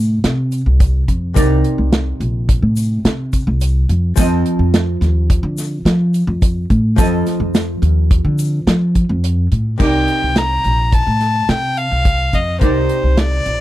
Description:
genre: progressive instrumental, band music in an uneven meter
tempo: 107 BPM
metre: 5/4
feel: straight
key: C dorian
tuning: A4 = 440 Hz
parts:
  - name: archtop guitar, miked and amplified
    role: accompaniment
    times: 0.0-13.6 s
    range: C3 to Eb5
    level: -22 LUFS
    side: right 1 dB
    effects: double-tracked left and right
  - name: upright bass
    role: bass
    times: 0.0-13.6 s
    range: Bb1 to F3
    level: -16 LUFS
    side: equal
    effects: none
  - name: modern studio drum kit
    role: drums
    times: 0.2-13.6 s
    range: crash cymbal, hi-hat, kick drum, snare drum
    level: -16 LUFS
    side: equal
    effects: none
  - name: tube shaker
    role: percussion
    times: 0.5-8.6 s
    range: none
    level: -32 LUFS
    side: left 8 dB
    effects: none
  - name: rich violin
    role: melody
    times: 9.8-13.6 s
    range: C5 to Bb5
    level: -18 LUFS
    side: left 1 dB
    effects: tape echo
room: little or no reverb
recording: dry, close 1970s-style studio recording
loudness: -13 LUFS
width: side -15 dB against mid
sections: 0.0-9.8 A section; 9.8-13.6 B section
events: none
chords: 0.0 Cm9; 4.2 F7; 9.8 Cm9

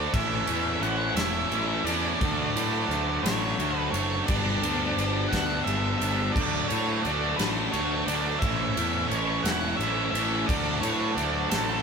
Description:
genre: quiet-loud alternative rock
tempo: 58 BPM (dotted quarters)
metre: 6/8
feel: straight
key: unclear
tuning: A4 = 444 Hz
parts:
  - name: octave-fuzz lead guitar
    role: melody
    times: 0.0-11.8 s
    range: A4 to F#5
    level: -31 LUFS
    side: equal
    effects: distortion
  - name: warm studio string section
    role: sustained chords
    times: 0.0-11.8 s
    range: G4 to C#6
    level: -38 LUFS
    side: left 4 dB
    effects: none
  - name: overdriven electric guitar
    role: riff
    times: 0.0-11.8 s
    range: G2 to F#4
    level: -32 LUFS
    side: left 5 dB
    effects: phaser
  - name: tight distorted guitar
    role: riff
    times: 0.0-11.8 s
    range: G2 to F#4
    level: -30 LUFS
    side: right 7 dB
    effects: distortion
  - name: fuzz picked electric bass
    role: bass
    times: 0.0-11.8 s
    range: E1 to A2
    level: -30 LUFS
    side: left 1 dB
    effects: overdrive
  - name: big rock drum kit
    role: drums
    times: 0.1-11.7 s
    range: crash cymbal, kick drum, ride cymbal, snare drum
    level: -30 LUFS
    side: right 1 dB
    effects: none
room: moderate stone room reverb, RT60 1.3 s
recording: band playing live in one room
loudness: -24 LUFS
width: side -6 dB against mid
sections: 0.0-11.8 A section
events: none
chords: 0.1 A; 2.2 D; 4.3 G; 6.4 D; 8.4 A; 10.5 D

